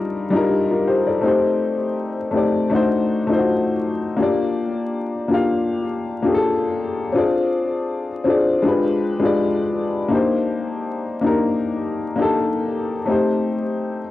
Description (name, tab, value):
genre	hip hop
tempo	81 BPM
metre	4/4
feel	swing 59% on 16ths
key	G minor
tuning	A4 = 441 Hz
part	warm upright piano	solo	0.0-14.1 s	G3 to F5	-18 LUFS	left 2 dB	cassette tape, low-pass filter, analog delay
room	wet studio ambience, RT60 0.5 s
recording	home recording on cassette, vinyl crackle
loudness	-18 LUFS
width	side -14 dB against mid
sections	0.0-14.1 A section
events	none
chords	0.0 Ebmaj9; 1.2 Am7b5; 2.7 D7b9; 4.2 Gm7; 7.1 Dm7b5; 8.6 G7b9; 10.1 Cm9; 13.1 Am7b5